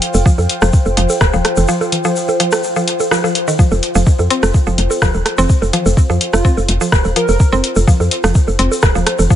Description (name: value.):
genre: minimal techno.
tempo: 126 BPM.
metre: 4/4.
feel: straight.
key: unclear.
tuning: A4 = 440 Hz.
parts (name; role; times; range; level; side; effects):
punchy analog drum machine; drums; 0.0-9.2 s; hi-hat, rim click; -18 LUFS; left 2 dB; none.
warbly tape-like pad; texture; 0.0-9.4 s; F4 to G5; -22 LUFS; left 1 dB; chorus, built-in reverb, sidechain pumping.
woody FM bass; bass; 0.1-9.3 s; Eb1 to F2; -16 LUFS; equal; sidechain pumping.
egg shaker; percussion; 0.1-9.4 s; none; -27 LUFS; left 4 dB; none.
electronic bongos, rim click and congas; percussion; 0.1-9.3 s; none; -20 LUFS; right 4 dB; overdrive, ping-pong delay.
mallet-like synth pluck; riff; 0.3-9.4 s; Eb3 to C4; -20 LUFS; equal; chorus, sidechain pumping, tape echo.
electronic kick drum; drums; 0.3-9.4 s; none; -11 LUFS; equal; none.
airy dreamy lead; melody; 6.3-7.4 s; F4 to Bb4; -22 LUFS; right 2 dB; chorus, ping-pong delay.
room: light reverb, digital ambience.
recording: nothing above 10.7 kHz.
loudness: -11 LUFS.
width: side -11 dB against mid.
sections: 0.0-9.4 A section.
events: break 1.7-3.6.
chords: 0.0 F5.